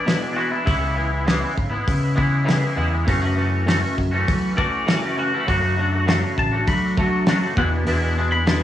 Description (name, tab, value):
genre	indie rock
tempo	100 BPM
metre	4/4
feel	straight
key	D lydian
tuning	A4 = 438 Hz
part	twangy electric guitar	melody	0.0-8.6 s	E4 to B5	-26 LUFS	left 1 dB	tape echo
part	twangy electric guitar	riff	0.0-8.6 s	E2 to F#4	-22 LUFS	left 1 dB	ensemble chorus, cassette tape
part	cloth-damped thuddy drum kit	drums	0.1-8.6 s	hi-hat, kick drum, snare drum	-22 LUFS	equal	cassette tape
part	overdriven picked electric bass	bass	0.7-8.6 s	G#1 to F#3	-22 LUFS	equal	none
room	light reverb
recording	home recording on cassette, small room reverb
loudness	-18 LUFS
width	side -11 dB against mid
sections	0.0-8.6 A section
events	clean electric guitar solo 0.0-8.6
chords	0.0 E7; 0.7 C#m7; 3.1 F#m7; 5.5 Dmaj7; 7.6 E7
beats	0.06 | 0.66 1.26 1.87 2.47 | 3.07 3.67 4.27 4.87 | 5.47 6.07 6.67 7.27 | 7.87 8.47